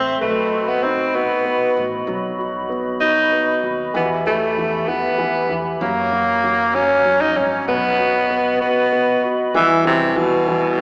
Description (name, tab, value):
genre	six-eight pop ballad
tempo	64 BPM (dotted quarters)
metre	6/8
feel	straight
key	E minor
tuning	A4 = 441 Hz
part	raspy tenor saxophone	melody	0.0-10.8 s	B2 to D#4	-20 LUFS	equal	none
part	clear grand piano	accompaniment	0.0-10.8 s	E3 to B4	-26 LUFS	equal	none
part	pipe organ, stopped flute	sustained chords	0.0-10.8 s	G3 to C6	-27 LUFS	equal	none
part	upright bass	bass	0.0-10.8 s	G#1 to F#2	-39 LUFS	equal	none
room	wet church reverb, RT60 3.7 s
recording	band playing live in one room, small speaker sound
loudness	-18 LUFS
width	mono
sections	0.0-9.5 A section; 9.5-10.8 B section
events	none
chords	0.2 B; 3.9 Em; 5.8 F#; 7.7 B; 9.5 Emadd9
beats	| 0.20 1.14 | 2.07 3.00 | 3.94 4.87 | 5.81 6.74 | 7.67 8.61 | 9.54 10.47